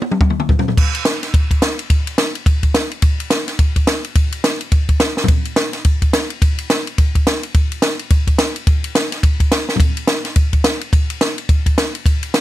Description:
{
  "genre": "rock",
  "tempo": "213 BPM",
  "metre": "4/4",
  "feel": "swing 60% on 8ths",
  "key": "none",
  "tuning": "none",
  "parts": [
    { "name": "compact cocktail drum kit", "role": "drums", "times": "0.0-12.4 s", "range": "crash cymbal, kick drum, ride cymbal, snare drum, toms", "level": "-14 LUFS", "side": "equal", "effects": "none" }
  ],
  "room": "light reverb",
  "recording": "none",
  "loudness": "-14 LUFS",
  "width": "side -14 dB against mid",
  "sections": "0.8-12.4 A section",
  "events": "drum fill 0.0-0.8, 5.1, 9.7",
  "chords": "none"
}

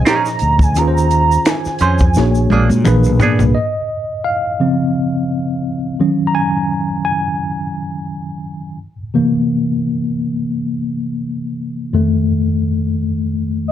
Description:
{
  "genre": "R&B, neo-soul",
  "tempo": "86 BPM",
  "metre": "4/4",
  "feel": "swing 56% on 16ths",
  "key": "Db major",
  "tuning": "A4 = 440 Hz",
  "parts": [
    { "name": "warm velvety synth lead", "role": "melody", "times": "0.0-2.9, 13.7 s", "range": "Eb5 to Bb5", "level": "-18 LUFS", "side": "right 4 dB", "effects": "chorus" },
    { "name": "tine electric piano", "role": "accompaniment", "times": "0.0-13.7 s", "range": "F2 to Bb5", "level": "-16 LUFS", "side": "left 1 dB", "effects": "overdrive, fast stereo tremolo" },
    { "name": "archtop guitar, miked and amplified", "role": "second line", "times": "0.1-3.4 s", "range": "Bb3 to C5", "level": "-18 LUFS", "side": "right 4 dB", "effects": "wah" },
    { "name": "compact cocktail drum kit", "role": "drums", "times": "0.1-3.5 s", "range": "hi-hat, kick drum, snare drum, toms", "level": "-16 LUFS", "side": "equal", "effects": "none" },
    { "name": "finger snaps and egg shaker", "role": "percussion", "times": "0.1-3.5 s", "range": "none", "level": "-30 LUFS", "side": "left 5 dB", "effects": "none" },
    { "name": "fretless electric bass", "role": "bass", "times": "0.4-3.5 s", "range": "Bb1 to Bb2", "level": "-15 LUFS", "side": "equal", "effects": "none" }
  ],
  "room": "light reverb",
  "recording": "dark, warm production",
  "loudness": "-14 LUFS",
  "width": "side -11 dB against mid",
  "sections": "0.0-3.5 A section; 3.5-13.7 B section",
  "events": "drum fill 2.1-3.5; tine electric piano solo 3.5-13.7",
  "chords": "0.0 Bbm11; 0.8 Eb13sus4; 2.1 Bb7alt; 2.8 Bb7b9; 3.5 Dbmaj9; 6.0 Ebm7; 8.8 C7; 11.9 F7"
}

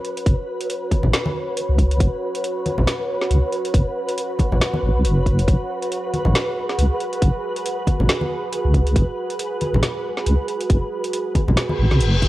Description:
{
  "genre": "deep dubstep",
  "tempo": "138 BPM",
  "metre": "4/4",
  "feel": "swing 57% on 16ths, half-time",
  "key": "F# minor",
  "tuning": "A4 = 437 Hz",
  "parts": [
    { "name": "deep dark ambient pad", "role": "sustained chords", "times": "0.0-12.3 s", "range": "F#4 to C#5", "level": "-27 LUFS", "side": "right 2 dB", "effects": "chorus, built-in reverb, cassette tape" },
    { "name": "garage drum kit", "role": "drums", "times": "0.0-12.3 s", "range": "hi-hat, snare drum", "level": "-25 LUFS", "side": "equal", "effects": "overdrive, cassette tape" },
    { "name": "flickering grainy texture", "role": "texture", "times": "0.0-12.3 s", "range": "B4", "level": "-28 LUFS", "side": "equal", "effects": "built-in reverb, cassette tape" },
    { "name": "deep soft wobble bass", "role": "bass", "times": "0.3-12.3 s", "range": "F#1 to C#2", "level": "-18 LUFS", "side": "equal", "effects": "chorus" },
    { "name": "electronic kick drum", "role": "drums", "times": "0.3-12.3 s", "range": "none", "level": "-18 LUFS", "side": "equal", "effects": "cassette tape" },
    { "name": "congas", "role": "percussion", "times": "0.9-12.3 s", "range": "none", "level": "-24 LUFS", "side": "left 1 dB", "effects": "none" },
    { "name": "reverse cymbal", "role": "sound effects", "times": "11.7-12.3 s", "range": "none", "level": "-25 LUFS", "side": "left 4 dB", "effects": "none" }
  ],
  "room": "light reverb",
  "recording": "home recording on cassette",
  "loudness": "-18 LUFS",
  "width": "side -16 dB against mid",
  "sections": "0.0-12.3 A section",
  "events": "reverse cymbal 11.7-12.3",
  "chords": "0.0 F#sus2"
}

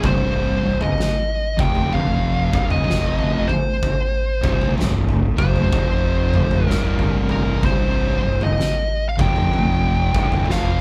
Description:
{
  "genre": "stoner and doom metal",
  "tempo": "63 BPM",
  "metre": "4/4",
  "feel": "swing 64% on 8ths",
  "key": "C minor",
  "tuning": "A4 = 440 Hz",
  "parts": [
    { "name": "fuzz lead guitar", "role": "melody", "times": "0.0-10.8 s", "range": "Bb4 to G5", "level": "-26 LUFS", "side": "equal", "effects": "distortion" },
    { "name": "thick fuzz guitar", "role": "riff", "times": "0.0-10.8 s", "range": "C2 to F#3", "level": "-27 LUFS", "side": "equal", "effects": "distortion" },
    { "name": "thick fuzz guitar", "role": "riff", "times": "0.0-10.8 s", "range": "C2 to F#3", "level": "-29 LUFS", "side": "equal", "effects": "distortion" },
    { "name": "fuzz fingered electric bass", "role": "bass", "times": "0.0-10.8 s", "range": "C1 to F#1", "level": "-27 LUFS", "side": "equal", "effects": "overdrive" },
    { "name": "oversized low-tuned drum kit", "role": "drums", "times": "0.0-10.8 s", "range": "kick drum, snare drum, toms", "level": "-23 LUFS", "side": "equal", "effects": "none" }
  ],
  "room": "little or no reverb",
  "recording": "band playing live in one room",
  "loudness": "-19 LUFS",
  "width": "mono",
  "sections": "0.0-10.8 A section",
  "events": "none",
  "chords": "0.0 Cm; 1.5 F5; 2.4 C5; 5.7 F5; 6.7 C5; 9.1 F5; 10.0 C5"
}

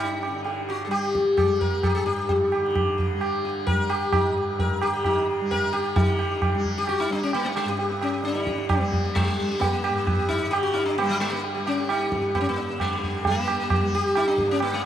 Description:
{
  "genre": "indian classical, Hindustani",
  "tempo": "131 BPM",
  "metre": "4/4",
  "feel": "straight",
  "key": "unclear",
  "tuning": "A4 = 445 Hz",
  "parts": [
    { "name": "sitar", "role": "melody", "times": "0.0-14.8 s", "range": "F#3 to Bb4", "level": "-24 LUFS", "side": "left 2 dB", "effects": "analog delay" },
    { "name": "tanpura", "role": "drone", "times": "0.0-14.9 s", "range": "G2 to G3", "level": "-32 LUFS", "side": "equal", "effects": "none" },
    { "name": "tabla", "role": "percussion", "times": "0.0-14.8 s", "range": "none", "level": "-26 LUFS", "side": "right 2 dB", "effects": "none" }
  ],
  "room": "moderate huge ambient reverb, RT60 8.9 s",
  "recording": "dreamy mix soaked in reverb, vinyl crackle",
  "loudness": "-22 LUFS",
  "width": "side -10 dB against mid",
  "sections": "0.0-6.0 A section; 6.0-14.9 B section",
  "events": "none",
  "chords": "none"
}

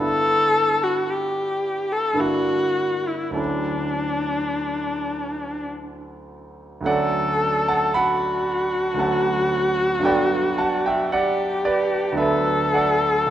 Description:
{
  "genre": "classical, impressionist duo for viola and grand piano",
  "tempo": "49-57 BPM",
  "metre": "3/4",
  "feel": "rubato",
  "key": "D major",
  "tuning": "A4 = 440 Hz",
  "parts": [
    { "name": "warm viola", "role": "melody", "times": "0.0-13.3 s", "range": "D4 to A4", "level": "-21 LUFS", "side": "left 1 dB", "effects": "none" },
    { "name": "clear concert grand piano", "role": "accompaniment", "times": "0.0-13.3 s", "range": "B1 to B5", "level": "-24 LUFS", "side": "right 2 dB", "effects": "none" }
  ],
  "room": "moderate scoring stage reverb, RT60 1.9 s",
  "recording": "none",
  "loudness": "-19 LUFS",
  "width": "side -11 dB against mid",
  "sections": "0.0-6.9 A section; 6.9-13.3 A section",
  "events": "none",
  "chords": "0.0 G6; 2.2 Gm6; 3.4 Dmaj9; 6.9 Dmaj7; 10.1 Gmaj9; 12.2 D6"
}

